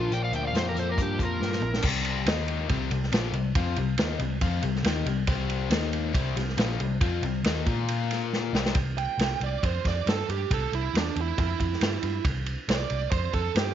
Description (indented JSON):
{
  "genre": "blues rock power trio and southern rock",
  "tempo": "138 BPM",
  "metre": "4/4",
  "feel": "straight",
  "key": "unclear",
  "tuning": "A4 = 440 Hz",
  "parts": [
    { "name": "overdriven slide guitar", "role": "melody", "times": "0.0-1.8 s", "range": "F4 to G5", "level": "-31 LUFS", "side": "equal", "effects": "none" },
    { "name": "bluesy overdriven lead guitar", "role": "second line", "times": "0.0-1.8, 9.0-13.7 s", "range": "D4 to G5", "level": "-31 LUFS", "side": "right 12 dB", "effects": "distortion" },
    { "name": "biting overdriven guitar", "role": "riff", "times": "0.0-8.8 s", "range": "Bb2 to Bb4", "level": "-30 LUFS", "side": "left 10 dB", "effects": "none" },
    { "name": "vintage muted picked electric bass", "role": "bass", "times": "0.0-13.7 s", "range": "Bb1 to Bb2", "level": "-30 LUFS", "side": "equal", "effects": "none" },
    { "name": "vintage drum kit", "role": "drums", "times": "0.1-13.7 s", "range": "crash cymbal, hi-hat, kick drum, ride cymbal, snare drum, toms", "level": "-28 LUFS", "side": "equal", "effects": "none" }
  ],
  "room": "light reverb, small room ambience",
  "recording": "1960s-style stereo with parts hard left and right, nothing above 7.5 kHz",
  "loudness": "-24 LUFS",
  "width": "side -10 dB against mid",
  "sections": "0.0-1.8 A section; 1.8-8.8 B section; 8.8-13.7 C section",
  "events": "drum fill 1.4-1.8, 8.3-8.8; lead electric guitar solo 8.8-13.7",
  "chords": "0.0 Bb; 1.8 C5; 2.3 Eb5; 2.7 C5; 5.7 Eb5; 6.1 C5; 7.7 Bb5; 8.5 C5; 8.8 C"
}